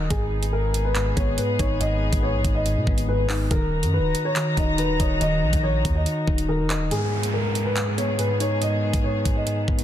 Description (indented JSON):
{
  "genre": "hip hop, drill",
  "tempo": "141 BPM",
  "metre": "4/4",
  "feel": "half-time",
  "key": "G# minor",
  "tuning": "A4 = 438 Hz",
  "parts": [
    { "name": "soft electric-piano-like synth keys", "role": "accompaniment", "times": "0.0-9.8 s", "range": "G#2 to D#5", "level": "-26 LUFS", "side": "equal", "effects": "chorus, low-pass filter" },
    { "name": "dark studio string section", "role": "sustained chords", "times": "0.0-9.8 s", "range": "G#2 to A#5", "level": "-30 LUFS", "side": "left 1 dB", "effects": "none" },
    { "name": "long sustained 808-style bass", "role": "bass", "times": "0.0-6.9 s", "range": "D#1 to B2", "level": "-26 LUFS", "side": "equal", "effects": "none" },
    { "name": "dark concert grand piano", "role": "melody", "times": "0.1-9.8 s", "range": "G#4 to D#5", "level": "-27 LUFS", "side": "left 1 dB", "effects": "low-pass filter" },
    { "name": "drill drum kit", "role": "drums", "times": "0.1-9.8 s", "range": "handclaps, hi-hat, kick drum, rim click", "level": "-25 LUFS", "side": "equal", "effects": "none" },
    { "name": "downlifter", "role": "sound effects", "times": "6.9-9.8 s", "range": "none", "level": "-32 LUFS", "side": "equal", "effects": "none" }
  ],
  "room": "light reverb, digital ambience",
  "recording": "dense, heavily limited modern master",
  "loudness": "-20 LUFS",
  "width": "side -11 dB against mid",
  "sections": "0.0-6.9 A section; 6.9-9.8 B section",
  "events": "none",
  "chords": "0.1 G#m; 3.5 D#m; 6.9 G#m"
}